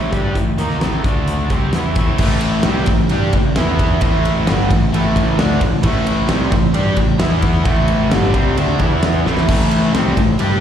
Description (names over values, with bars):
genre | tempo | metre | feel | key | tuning
hard rock | 132 BPM | 4/4 | straight | A minor | A4 = 437 Hz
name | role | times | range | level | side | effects
lightly driven lead guitar | melody | 0.0-1.7 s | E5 | -34 LUFS | right 4 dB | none
overdriven electric guitar | riff | 0.0-10.6 s | G2 to G4 | -22 LUFS | right 10 dB | slapback echo
tight distorted guitar | riff | 0.0-10.6 s | G2 to G4 | -23 LUFS | left 9 dB | distortion
fuzz fingered electric bass | bass | 0.0-10.6 s | G1 to G2 | -19 LUFS | equal | overdrive
big rock drum kit | drums | 0.1-10.5 s | crash cymbal, hi-hat, kick drum, ride cymbal, snare drum | -18 LUFS | equal | none
distorted electric guitar | riff | 2.2-10.6 s | G2 to G4 | -21 LUFS | equal | distortion
room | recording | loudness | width
light reverb | live gig heard through the venue's PA, recital hall reverb | -13 LUFS | side -9 dB against mid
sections
0.0-2.2 A section; 2.2-9.5 B section; 9.5-10.6 B section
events
drum fill 9.3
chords
0.0 A5; 1.0 D5; 1.5 Am; 3.6 E5; 4.0 Am; 7.2 E5; 7.7 Am; 8.8 E5; 9.3 A5; 9.5 Am